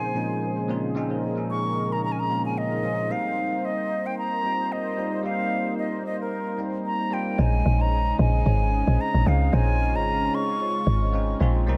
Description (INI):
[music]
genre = amapiano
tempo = 112 BPM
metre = 4/4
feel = swing 55% on 16ths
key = Bb dorian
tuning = A4 = 442 Hz
[part]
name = concert flute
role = melody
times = 0.0-11.4 s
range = Bb4 to Db6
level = -30 LUFS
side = equal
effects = tape echo
[part]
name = bell-like tine electric piano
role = accompaniment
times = 0.0-11.8 s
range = Bb2 to C5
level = -32 LUFS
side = equal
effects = phaser, tape echo
[part]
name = warm analog pad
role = sustained chords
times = 0.0-11.8 s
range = C3 to C5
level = -34 LUFS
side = equal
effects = chorus
[part]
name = marimba with soft mallets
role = stabs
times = 7.4-11.8 s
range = Ab4 to Eb5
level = -37 LUFS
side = equal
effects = tape echo
[part]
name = woody log drum bass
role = bass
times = 7.4-11.8 s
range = Ab1 to Db2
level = -23 LUFS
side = equal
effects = none
[sound]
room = light reverb, studio reverb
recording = echo-heavy mix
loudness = -25 LUFS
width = mono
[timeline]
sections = 0.0-7.4 A section; 7.4-11.8 B section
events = drop 7.4-11.8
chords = 0.0 Bbm11; 3.1 Cm7; 7.4 Bbm11